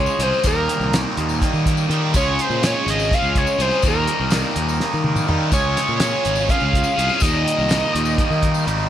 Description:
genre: psychedelic rock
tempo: 248 BPM (eighths)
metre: 7/8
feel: straight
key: Eb mixolydian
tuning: A4 = 439 Hz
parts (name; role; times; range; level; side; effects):
- overdriven synth lead; melody; 0.0-8.7 s; Bb4 to F5; -23 LUFS; equal; digital delay
- crunchy overdriven guitar; riff; 0.0-8.9 s; Eb2 to Ab4; -21 LUFS; equal; phaser
- fuzz fingered electric bass; bass; 0.0-8.9 s; Ab1 to Eb3; -23 LUFS; equal; overdrive
- tambourine; percussion; 0.1-8.8 s; none; -33 LUFS; left 13 dB; none
- cloth-damped thuddy drum kit; drums; 0.2-8.8 s; hi-hat, kick drum, snare drum, toms; -22 LUFS; equal; none
room: small room ambience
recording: none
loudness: -16 LUFS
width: side -10 dB against mid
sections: 0.0-8.9 A section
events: drum fill 4.8-5.5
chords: 0.5 Eb; 2.1 Db; 3.8 Eb; 5.5 Db; 7.2 Eb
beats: 0.21 | 0.45 0.69 0.93 1.18 1.42 1.66 1.90 | 2.14 2.38 2.63 2.87 3.11 3.35 3.60 | 3.84 4.08 4.32 4.56 4.80 5.05 5.29 | 5.53 5.77 6.01 6.25 6.50 6.74 6.98 | 7.22 7.46 7.71 7.95 8.19 8.43 8.67

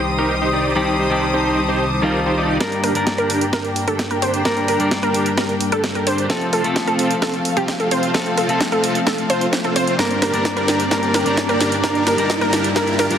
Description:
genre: EDM, festival progressive house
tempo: 130 BPM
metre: 4/4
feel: straight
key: G minor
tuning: A4 = 441 Hz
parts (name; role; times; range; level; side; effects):
- clean electric guitar; accompaniment; 0.0-13.2 s; G2 to Bb4; -22 LUFS; left 2 dB; vintage 12-bit sampler grit, sidechain pumping, digital delay
- dark studio string section; sustained chords; 0.0-13.2 s; Bb3 to Eb6; -25 LUFS; left 1 dB; sidechain pumping
- wide detuned saw bass; bass; 0.0-2.6 s; C2; -26 LUFS; right 1 dB; chorus, sidechain pumping
- dense compressed supersaw; riff; 0.2-13.2 s; C4 to D5; -22 LUFS; right 1 dB; sidechain pumping, low-pass filter, digital delay
- wide unison pluck; arpeggios; 2.6-13.2 s; G4 to C5; -22 LUFS; right 1 dB; cassette tape, sidechain pumping, digital delay
- electronic kick drum; drums; 2.6-12.9 s; none; -26 LUFS; equal; none
- house drum kit; drums; 2.6-13.2 s; hi-hat, snare drum; -24 LUFS; right 1 dB; high-pass filter on snare, high-pass filter on hats, high-pass filter on room
- riser; sound effects; 5.5-13.2 s; none; -28 LUFS; right 2 dB; none
room: moderate huge ambient reverb, RT60 4.0 s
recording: heavily compressed radio sound, multiband compression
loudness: -16 LUFS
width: side -8 dB against mid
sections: 0.0-2.6 A section; 2.6-13.2 B section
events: build-up 2.6-13.2; drum fill 2.6-13.2; filter sweep on supersaw synth 2.6-13.2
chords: 0.0 Cm; 2.6 Gm; 6.3 F; 10.0 Gm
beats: 0.30 | 0.76 1.22 1.68 2.14 | 2.61 3.07 3.53 3.99 | 4.45 4.91 5.38 5.84 | 6.30 6.76 7.22 7.68 | 8.14 8.61 9.07 9.53 | 9.99 10.45 10.91 11.38 | 11.84 12.30 12.76

